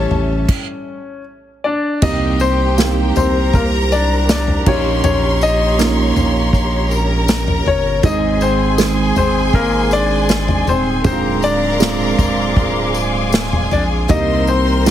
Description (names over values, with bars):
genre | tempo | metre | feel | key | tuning
pop ballad | 79 BPM | 4/4 | straight | C minor | A4 = 440 Hz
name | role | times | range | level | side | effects
warm baby grand piano | melody | 0.0-14.9 s | Bb3 to Eb5 | -19 LUFS | left 4 dB | none
bright studio violin section | second line | 0.0-14.9 s | G4 to C6 | -24 LUFS | equal | none
felt-muted upright piano | accompaniment | 0.0-14.9 s | Ab2 to Ab4 | -20 LUFS | right 6 dB | none
dark studio string section | sustained chords | 0.0-14.9 s | G3 to D6 | -26 LUFS | left 2 dB | none
picked steel-string acoustic guitar | arpeggios | 0.0-1.0, 14.1-14.9 s | A2 to Bb4 | -25 LUFS | left 7 dB | ping-pong delay
saturated sub bass | bass | 0.0-14.9 s | D1 to C2 | -19 LUFS | equal | none
unplugged drum kit | drums | 0.1-14.9 s | crash cymbal, kick drum, snare drum, toms | -18 LUFS | equal | none
tambourine | percussion | 2.0-14.9 s | none | -30 LUFS | left 9 dB | none
room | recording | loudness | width
light reverb, small room ambience | heavily compressed radio sound, faint mains hum | -13 LUFS | side -11 dB against mid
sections
0.0-2.0 A section; 2.0-14.9 B section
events
stop 0.5-2.0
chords
0.5 N.C.; 2.0 Cm7; 4.7 Eb7/Bb; 8.0 Ab; 11.1 Dm7b5; 14.1 Cm7